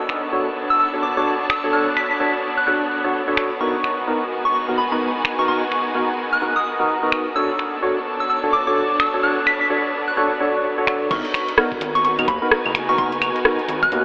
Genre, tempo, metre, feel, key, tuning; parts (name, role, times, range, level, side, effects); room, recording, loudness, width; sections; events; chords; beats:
UK garage, two-step garage; 128 BPM; 4/4; swing 60% on 16ths; A4 = 440 Hz
soft synth bell; melody; 0.0-14.0 s; B5 to B6; -24 LUFS; equal; chorus, phaser, tape echo
rich studio violin section; sustained chords; 0.0-14.0 s; G#3 to C#5; -31 LUFS; equal; sidechain pumping, low-pass filter
rich symphonic string section; texture; 0.0-14.0 s; B3 to A5; -30 LUFS; equal; sidechain pumping
garage drum kit; drums; 0.1-14.0 s; claves, crash cymbal, finger snaps, hi-hat, rim click; -25 LUFS; equal
percussive organ stab; stabs; 0.3-14.0 s; B3 to C#5; -25 LUFS; equal; lush chorus, tape echo
rubbery square bass; bass; 11.1-14.0 s; F#1 to D#2; -32 LUFS; equal
electronic kick drum; drums; 11.1-13.9 s; -36 LUFS; equal
wet cathedral reverb, RT60 6.2 s; dreamy mix soaked in reverb, telephone sound; -20 LUFS; mono
0.0-11.1 A section; 11.1-14.0 B section
drop 11.1-14.0
0.0 Bm7; 3.6 G#m7; 7.4 Bm7; 11.1 G#m7
0.33 0.79 1.26 | 1.73 2.20 2.67 3.14 | 3.61 4.08 4.54 5.01 | 5.48 5.95 6.42 6.89 | 7.36 7.83 8.29 8.76 | 9.23 9.70 10.17 10.64 | 11.11 11.58 12.04 12.51 | 12.98 13.45 13.92